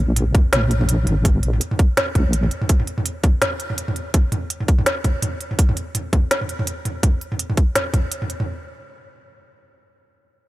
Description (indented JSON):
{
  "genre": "half-time drum and bass",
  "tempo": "166 BPM",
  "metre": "4/4",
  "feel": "swing 57% on 16ths, half-time",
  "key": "Bb minor",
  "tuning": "A4 = 440 Hz",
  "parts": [
    { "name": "deep soft wobble bass", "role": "bass", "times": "0.0-2.5 s", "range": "Ab1 to Db2", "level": "-18 LUFS", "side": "equal", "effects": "chorus" },
    { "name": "organic electronic drum kit", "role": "drums", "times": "0.2-8.5 s", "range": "hi-hat, snare drum, toms", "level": "-22 LUFS", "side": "equal", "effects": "overdrive" },
    { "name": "electronic kick drum", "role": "drums", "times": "0.3-8.0 s", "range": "none", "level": "-16 LUFS", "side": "equal", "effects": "none" }
  ],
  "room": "little or no reverb",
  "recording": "none",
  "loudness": "-18 LUFS",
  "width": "side -17 dB against mid",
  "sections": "0.0-8.5 A section",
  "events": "none",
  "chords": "none",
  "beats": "0.16 0.53 0.89 | 1.25 1.61 1.97 2.33 | 2.69 3.06 3.42 3.78 | 4.14 4.50 4.86 5.22 | 5.58 5.95 6.31 6.67 | 7.03 7.39 7.75 8.12"
}